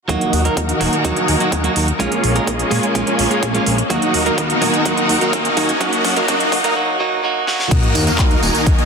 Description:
EDM, festival progressive house; 126 BPM; 4/4; straight; Eb minor; A4 = 438 Hz
direct-recorded clean electric guitar; accompaniment; 0.1-7.7 s; Gb3 to Bb4; -20 LUFS; right 4 dB; sidechain pumping, dub echo
rich symphonic string section; sustained chords; 0.1-8.9 s; Eb3 to Bb4; -22 LUFS; left 2 dB; vintage 12-bit sampler grit, sidechain pumping
big supersaw lead; riff; 0.1-8.9 s; Bb3 to Ab5; -20 LUFS; equal; sidechain pumping, low-pass filter, dub echo
fat analog bass; bass; 0.1-8.7 s; Eb1 to Bb2; -22 LUFS; left 1 dB; sidechain pumping
big-room dance drum kit; drums; 0.1-8.9 s; crash cymbal, handclaps, hi-hat, ride cymbal, snare drum, tambourine; -22 LUFS; right 3 dB
electronic kick drum; drums; 0.1-8.8 s; -20 LUFS; left 1 dB; high-pass filter on kick
riser and sub drop; sound effects; 1.9-8.9 s; -24 LUFS; left 2 dB
light reverb; dense, heavily limited modern master, high-pass filter; -14 LUFS; side -5 dB against mid
0.1-7.7 A section; 7.7-8.9 B section
build-up 0.1-7.7; filter sweep on supersaw synth 0.1-7.7; filter sweep 0.1-7.7; riser 1.9-6.8; drum fill 3.9-6.8, 7.5; drop 7.7-8.9; impact 7.7-8.9
0.1 Ebm; 2.0 Bbm7; 3.9 Ebm; 5.8 Gb; 7.7 Ebm

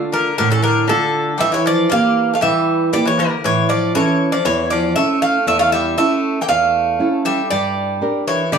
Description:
greek folk; 118 BPM; 4/4; straight; A4 = 441 Hz
Greek bouzouki; melody; 0.0-8.6 s; A4 to G5; -18 LUFS; right 1 dB
Greek bouzouki; second line; 0.0-8.6 s; C#3 to Bb3; -21 LUFS; left 2 dB
nylon-string guitar; accompaniment; 0.0-8.6 s; E2 to Bb4; -19 LUFS; right 2 dB
wet studio reverb, RT60 0.6 s; band playing live in one room; -14 LUFS; side -6 dB against mid
0.0-8.6 A section
0.0 Dm; 1.4 Edim; 3.4 A; 7.5 Gm

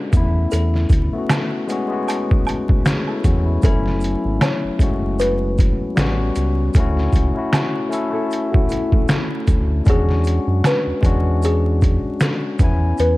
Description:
lo-fi hip hop; 77 BPM; 4/4; swing 56% on 16ths; A4 = 440 Hz
kalimba; melody; 0.0-13.2 s; G#4 to C#5; -25 LUFS; equal; low-pass filter
barky tine electric piano; accompaniment; 0.0-13.2 s; F#3 to G#5; -22 LUFS; left 2 dB; cassette tape, low-pass filter
round analog bass; bass; 0.1-13.2 s; F#1 to F#2; -19 LUFS; equal
trip hop sampler-style drum kit; drums; 0.1-13.2 s; finger snaps, hi-hat, kick drum, snare drum; -18 LUFS; equal; overdrive
maracas and woodblock; percussion; 0.1-13.2 s; -31 LUFS; right 5 dB
nylon-string guitar; second line; 8.1-9.8 s; A3 to A4; -28 LUFS; equal; low-pass filter, analog delay
light reverb, small room ambience; dark, warm production, vinyl crackle; -16 LUFS; side -19 dB against mid
0.0-13.2 A section
0.1 Amaj9; 3.6 F#m9; 6.0 A13; 6.7 Dmaj9; 9.9 E13; 12.6 Amaj9

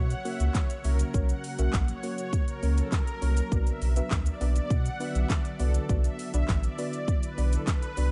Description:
dance-pop; 101 BPM; 4/4; straight; B harmonic minor; A4 = 442 Hz
supersaw pad; melody; 0.0-8.1 s; A4 to F#5; -40 LUFS; equal; sidechain pumping, delay
soft round pluck; accompaniment; 0.0-8.1 s; A#3 to E5; -39 LUFS; equal; chorus, sidechain pumping
ethereal airy pad; sustained chords; 0.2-8.1 s; C#3 to F#4; -41 LUFS; equal; ensemble chorus, built-in reverb, sidechain pumping
saturated sub bass; bass; 0.0-8.1 s; A1 to B2; -28 LUFS; equal; sidechain pumping
pop drum kit; drums; 0.1-8.1 s; handclaps, hi-hat, kick drum, shaker, snare drum; -31 LUFS; equal
digital ambience; nothing above 10.7 kHz; -28 LUFS; mono
0.0-8.1 A section
0.0 F#; 3.5 Bm

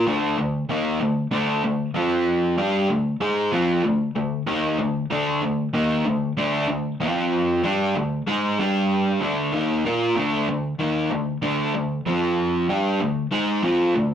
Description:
rock; 95 BPM; 4/4; straight; D minor; A4 = 439 Hz
overdriven semi-hollow guitar; solo; 0.0-14.1 s; D3 to Bb4; -20 LUFS; equal
moderate studio reverb, RT60 0.6 s; rough rehearsal-room recording, warm saturation; -20 LUFS; side -9 dB against mid
0.1-14.1 A section
0.1 D5; 2.0 F5; 2.6 Dm; 7.0 F5; 7.6 D5; 8.6 G5; 9.2 D5; 12.1 F5; 12.7 Dm

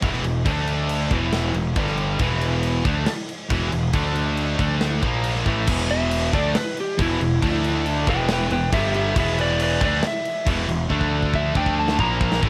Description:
hard rock; 138 BPM; 4/4; straight; A4 = 441 Hz
distorted electric guitar; riff; 0.0-12.5 s; E2 to D4; -32 LUFS; equal; overdrive
distorted electric guitar; riff; 0.0-12.5 s; E2 to D4; -30 LUFS; equal; overdrive
distorted electric guitar; riff; 0.0-12.5 s; E2 to D4; -31 LUFS; equal; overdrive
fuzz picked electric bass; bass; 0.0-12.5 s; E1 to D2; -27 LUFS; equal; overdrive
big rock drum kit; drums; 0.0-12.5 s; crash cymbal, kick drum, snare drum; -28 LUFS; equal
lightly driven lead guitar; melody; 5.9-12.4 s; E4 to A#5; -27 LUFS; equal; analog delay
light reverb; -22 LUFS; mono
0.0-5.7 A section; 5.7-12.5 B section
lead electric guitar solo 5.7-12.5; drum fill 10.9-12.5
0.5 D5; 1.1 E5; 1.8 G5; 2.2 E5; 3.9 D5; 5.0 A#5; 5.5 A5; 5.7 E5; 7.4 D5; 8.1 E5; 8.7 G5; 9.2 E5; 10.9 D5; 12.0 A#5

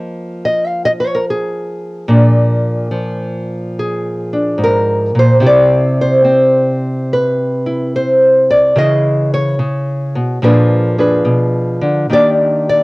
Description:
solo jazz; 72 BPM; 4/4; swing 68% on 8ths; A4 = 439 Hz
nylon-string guitar; solo; 0.0-12.8 s; Ab2 to F5; -11 LUFS; equal; cassette tape
light reverb; home recording on cassette; -11 LUFS; side -23 dB against mid
0.0-12.1 A section
nylon-string guitar solo 0.0-12.1
0.0 Db69 (rootless); 2.1 Bb7; 5.4 Cmaj7; 8.7 Dbm7; 10.4 Bb7b9; 12.1 Ebmaj7

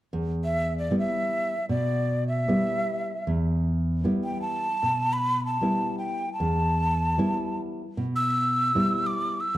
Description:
andean folk; free time; E minor pentatonic; A4 = 441 Hz
nylon-string guitar; accompaniment; 0.1-9.6 s; E2 to E4; -26 LUFS; equal
breathy mellow quena; melody; 0.4-9.6 s; D5 to E6; -26 LUFS; equal
moderate recital hall reverb, RT60 1.4 s; dark, warm production; -24 LUFS; side -14 dB against mid
0.1-9.6 A section
0.1 Em

